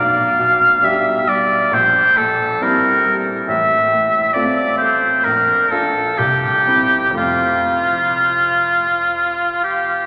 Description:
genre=classical, romantic duo for oboe and grand piano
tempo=59-71 BPM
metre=4/4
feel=rubato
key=F major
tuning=A4 = 436 Hz
part: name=warm oboe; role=melody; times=0.0-10.1 s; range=F4 to F5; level=-16 LUFS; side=equal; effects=none
part: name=clear baby grand piano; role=accompaniment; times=0.0-10.1 s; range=A1 to G4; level=-26 LUFS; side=equal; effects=none
room=wet cathedral reverb, RT60 4.3 s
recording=none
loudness=-16 LUFS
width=mono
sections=0.0-10.1 A section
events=none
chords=0.0 G7/B; 1.7 C7/Bb; 3.5 F/A; 5.2 Bbmaj7; 6.2 C; 7.2 F

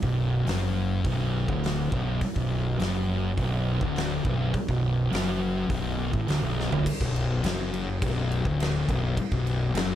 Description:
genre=stoner and doom metal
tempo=103 BPM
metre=4/4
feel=straight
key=B minor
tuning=A4 = 439 Hz
part: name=thick fuzz guitar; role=riff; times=0.0-9.9 s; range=B1 to A2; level=-27 LUFS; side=left 3 dB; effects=distortion
part: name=thick fuzz guitar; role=riff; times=0.0-6.8 s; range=B1 to A2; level=-30 LUFS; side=right 8 dB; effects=distortion
part: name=fuzz fingered electric bass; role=bass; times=0.0-9.9 s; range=B0 to A1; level=-32 LUFS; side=equal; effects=overdrive, tube saturation
part: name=big rock drum kit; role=drums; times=0.0-9.9 s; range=crash cymbal, hi-hat, kick drum, snare drum, toms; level=-31 LUFS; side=equal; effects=none
room=light reverb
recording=none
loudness=-24 LUFS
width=side -11 dB against mid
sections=0.0-6.9 A section; 6.9-9.9 B section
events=drum fill 6.6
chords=0.0 Bm

